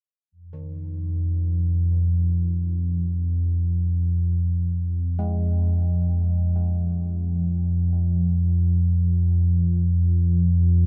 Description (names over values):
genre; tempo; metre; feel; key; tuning
dark ambient drone; free time; none; none; F minor; A4 = 437 Hz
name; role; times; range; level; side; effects
deep rumbling drone; drone; 0.6-10.9 s; F2 to F3; -22 LUFS; equal; built-in reverb, phaser
gamelan-type bossed gongs; arpeggios; 0.5-10.7 s; Eb3 to Ab3; -42 LUFS; equal; delay
room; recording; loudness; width
small room ambience; none; -22 LUFS; mono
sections
0.3-10.9 A section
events
fade-in on kettle gongs 0.3-10.9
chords
0.3 Fm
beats
free time